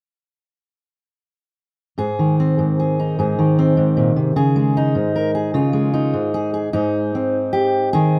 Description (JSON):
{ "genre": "folk, solo fingerstyle acoustic guitar", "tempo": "50 BPM (dotted quarters)", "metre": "6/8", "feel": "rubato", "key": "Ab major", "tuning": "A4 = 442 Hz", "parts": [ { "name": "fingerpicked steel-string acoustic guitar", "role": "solo", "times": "2.0-8.2 s", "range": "Ab2 to Bb4", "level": "-18 LUFS", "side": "equal", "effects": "none" } ], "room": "light reverb", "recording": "none", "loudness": "-18 LUFS", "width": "mono", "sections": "2.0-6.7 A section; 6.7-8.2 B section", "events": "none", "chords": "2.0 Ab; 4.4 Dbsus2; 6.7 Ab" }